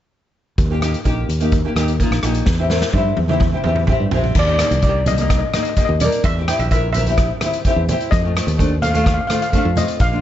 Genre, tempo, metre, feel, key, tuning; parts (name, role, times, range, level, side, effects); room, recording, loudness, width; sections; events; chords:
calypso; 128 BPM; 4/4; straight; Eb major; A4 = 440 Hz
fingered electric bass; bass; 0.6-10.2 s; Bb1 to G2; -19 LUFS; equal
street-band drum kit; drums; 0.6-10.1 s; crash cymbal, hi-hat, kick drum, rim click, snare drum, toms; -20 LUFS; equal
nylon-string guitar; accompaniment; 0.7-10.2 s; A3 to E5; -21 LUFS; left 1 dB; double-tracked left and right
steel pan; melody; 4.4-10.2 s; D5 to G5; -22 LUFS; left 2 dB; analog delay
congas; percussion; 4.7-9.9 s; -26 LUFS; right 1 dB
light reverb, small room ambience; nothing above 7.8 kHz; -15 LUFS; side -12 dB against mid
0.6-4.4 A section; 4.4-10.2 B section
drum fill 2.5-4.4; nylon-string guitar fill 3.7-4.4
0.6 Eb; 2.5 C7/E; 4.4 Eb; 6.2 C7; 8.1 F7